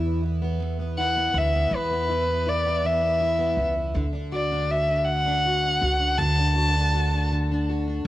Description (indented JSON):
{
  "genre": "six-eight pop ballad",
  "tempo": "54 BPM (dotted quarters)",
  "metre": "6/8",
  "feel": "straight",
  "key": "unclear",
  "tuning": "A4 = 440 Hz",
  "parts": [
    { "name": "picked plugged-in steel-string acoustic guitar", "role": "accompaniment", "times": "0.0-8.1 s", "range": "E2 to F#4", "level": "-29 LUFS", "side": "equal", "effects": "double-tracked left and right" },
    { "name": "upright bass", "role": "bass", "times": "0.0-8.0 s", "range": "C#2 to E2", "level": "-26 LUFS", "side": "equal", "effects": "none" },
    { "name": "warm violin", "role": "melody", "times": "1.0-7.3 s", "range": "B4 to A5", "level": "-24 LUFS", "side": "equal", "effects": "cassette tape, plate reverb, analog delay" }
  ],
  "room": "light reverb",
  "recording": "home recording on cassette",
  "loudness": "-21 LUFS",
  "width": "side -15 dB against mid",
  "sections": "0.0-8.1 A section",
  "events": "none",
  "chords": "0.0 C#m7 (rootless); 4.0 D"
}